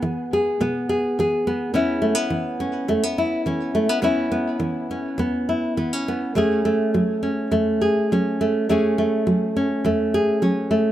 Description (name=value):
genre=folk, solo fingerstyle acoustic guitar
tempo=104 BPM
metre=4/4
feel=straight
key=unclear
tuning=A4 = 436 Hz
part: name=nylon-string guitar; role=solo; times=0.0-10.9 s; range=E2 to G#4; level=-19 LUFS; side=equal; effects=tape echo
room=light reverb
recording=close, detailed microphones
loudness=-19 LUFS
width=side -12 dB against mid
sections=0.0-10.9 A section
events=none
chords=0.0 E; 1.7 C#m7/E; 6.4 F#madd9/E